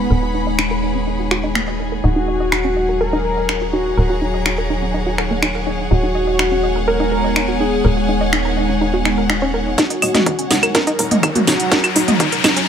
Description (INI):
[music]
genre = melodic techno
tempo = 124 BPM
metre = 4/4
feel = straight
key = Eb minor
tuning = A4 = 440 Hz
[part]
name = wide unison lead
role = melody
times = 0.0-12.1 s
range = Cb4 to Bb4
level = -22 LUFS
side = equal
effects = lush chorus, sidechain pumping, dub echo
[part]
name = deep dark ambient pad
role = sustained chords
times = 0.0-12.7 s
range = Gb3 to Db5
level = -23 LUFS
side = equal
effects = chorus, built-in reverb, sidechain pumping
[part]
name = tight sequencer bass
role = bass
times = 0.0-12.6 s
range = Eb1 to Db2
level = -22 LUFS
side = equal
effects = sidechain pumping, high-pass filter
[part]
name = rich chamber string section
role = texture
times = 0.0-12.7 s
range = Ab4 to Cb6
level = -25 LUFS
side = left 1 dB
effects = sidechain pumping
[part]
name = wide unison pluck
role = arpeggios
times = 0.1-12.7 s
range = Bb3 to Eb5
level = -23 LUFS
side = right 1 dB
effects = sidechain pumping, dub echo
[part]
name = techno drum kit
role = drums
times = 0.6-12.7 s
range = claves, finger snaps, hi-hat, snare drum, toms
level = -18 LUFS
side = right 1 dB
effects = none
[part]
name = electronic kick drum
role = drums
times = 9.8-12.3 s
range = none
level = -21 LUFS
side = equal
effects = high-pass filter on kick, high-pass filter on room
[part]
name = riser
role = sound effects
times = 10.9-12.7 s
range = none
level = -23 LUFS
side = left 5 dB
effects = none
[sound]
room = moderate lush hall reverb, RT60 1.9 s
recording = none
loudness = -15 LUFS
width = side -8 dB against mid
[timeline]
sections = 0.0-9.8 A section; 9.8-12.7 B section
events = filter sweep on synth arpeggio sound 0.0-9.8; filter sweep on ambient pad 0.0-9.8; build-up 9.8-12.7; drum fill 9.8-12.7; riser 10.9-12.7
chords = 0.0 Abm/Eb; 2.0 Ebm7; 5.9 Abm/Eb; 9.8 Ebm7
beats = | 0.10 0.59 1.07 1.55 | 2.04 2.52 3.01 3.49 | 3.97 4.46 4.94 5.43 | 5.91 6.39 6.88 7.36 | 7.84 8.33 8.81 9.30 | 9.78 10.26 10.75 11.23 | 11.72 12.20 12.68